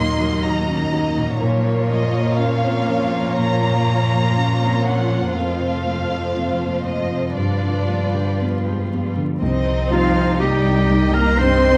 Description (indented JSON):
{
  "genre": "cinematic, emotional film score for orchestra",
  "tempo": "60 BPM",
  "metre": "4/4",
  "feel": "rubato",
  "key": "Bb minor",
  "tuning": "A4 = 440 Hz",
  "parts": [
    { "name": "rich studio violin section", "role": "melody", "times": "0.0-11.8 s", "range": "D5 to C6", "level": "-29 LUFS", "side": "equal", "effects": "none" },
    { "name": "warm studio violin section", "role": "second line", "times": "0.0-11.8 s", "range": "Eb4 to F5", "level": "-28 LUFS", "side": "equal", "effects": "none" },
    { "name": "felt-muted upright piano", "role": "accompaniment", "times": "0.0-11.8 s", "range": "C2 to G4", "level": "-27 LUFS", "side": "equal", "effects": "none" },
    { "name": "rich studio viola section", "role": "accompaniment", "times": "0.0-11.8 s", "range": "F3 to Eb4", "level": "-31 LUFS", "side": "equal", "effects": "none" },
    { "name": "concert harp", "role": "arpeggios", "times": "0.0-11.8 s", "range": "F2 to Eb5", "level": "-28 LUFS", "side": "equal", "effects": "none" },
    { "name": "rich studio cello section", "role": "bass", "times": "0.0-11.8 s", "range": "Eb2 to C4", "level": "-25 LUFS", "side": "equal", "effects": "none" },
    { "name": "warm studio double bass section", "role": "bass", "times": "9.4-11.8 s", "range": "C2", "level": "-24 LUFS", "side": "equal", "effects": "none" },
    { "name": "clear clarinet", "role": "second line", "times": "9.9-11.8 s", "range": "F4 to C5", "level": "-22 LUFS", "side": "equal", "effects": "none" },
    { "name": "mellow French horn section", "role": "sustained chords", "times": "9.9-11.8 s", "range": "F3 to C4", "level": "-25 LUFS", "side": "equal", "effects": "none" }
  ],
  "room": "light reverb",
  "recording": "close, detailed microphones, vinyl crackle",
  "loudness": "-19 LUFS",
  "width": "mono",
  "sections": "0.0-9.4 A section; 9.4-11.8 A section",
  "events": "none",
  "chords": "0.0 Ebm; 1.4 Bbm; 5.3 F; 7.4 G7; 9.4 Cm",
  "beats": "0.43 | 1.40 2.37 3.38 4.36 | 5.35 6.34 7.37 8.39 | 9.41 10.40 11.39"
}